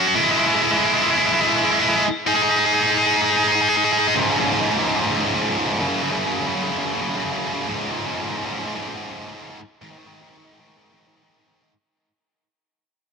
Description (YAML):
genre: metal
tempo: 128 BPM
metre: 4/4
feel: straight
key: C# minor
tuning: A4 = 445 Hz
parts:
  - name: heavy high-gain guitar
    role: solo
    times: 0.0-11.7 s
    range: C#2 to G#4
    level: -18 LUFS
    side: equal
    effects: distortion, tape echo
room: light reverb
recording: dark, warm production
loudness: -17 LUFS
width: side -5 dB against mid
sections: 0.0-4.2 A section; 4.2-11.7 B section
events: half time 0.0-4.2; fade-out 4.2-11.7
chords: 0.2 E/G#; 2.3 G#5; 4.2 C#5; 5.8 F#5; 7.7 C#5; 9.8 G#5